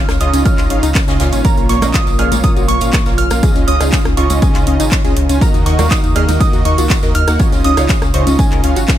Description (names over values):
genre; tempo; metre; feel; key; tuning
progressive house; 121 BPM; 4/4; straight; Db major; A4 = 440 Hz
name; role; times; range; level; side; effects
glassy synth bell; melody; 0.0-9.0 s; Ab5 to F6; -22 LUFS; right 4 dB; chorus, sidechain pumping, ping-pong delay
glassy wavetable pluck; second line; 0.0-9.0 s; Ab5 to F6; -30 LUFS; right 1 dB; chorus, vintage 12-bit sampler grit, sidechain pumping, digital delay
warm analog pad; sustained chords; 0.0-9.0 s; Db3 to Bb4; -23 LUFS; right 1 dB; chorus, sidechain pumping
tight sequenced synth; arpeggios; 0.0-9.0 s; Bb3 to Db5; -22 LUFS; left 4 dB; chorus, cassette tape, sidechain pumping, digital delay
soft supersaw; stabs; 0.0-8.8 s; Bb2 to Ab5; -20 LUFS; right 2 dB; sidechain pumping, digital delay
round analog bass; bass; 0.1-8.9 s; Ab1 to Eb2; -16 LUFS; equal; sidechain pumping
jazz brush drum kit; drums; 0.1-9.0 s; hi-hat, snare drum; -30 LUFS; left 2 dB; none
pop drum kit; drums; 0.1-9.0 s; handclaps, hi-hat, rim click; -22 LUFS; right 1 dB; none
tambourine; percussion; 0.1-9.0 s; none; -30 LUFS; right 5 dB; none
electronic kick drum; drums; 0.5-9.0 s; none; -14 LUFS; equal; overdrive
congas and cowbell; percussion; 1.8-8.4 s; none; -25 LUFS; right 5 dB; sidechain pumping on perc
room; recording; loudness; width
little or no reverb; none; -10 LUFS; side -12 dB against mid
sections
0.0-9.0 A section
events
none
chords
0.0 Dbadd9; 5.4 Ebm; 7.4 Dbadd9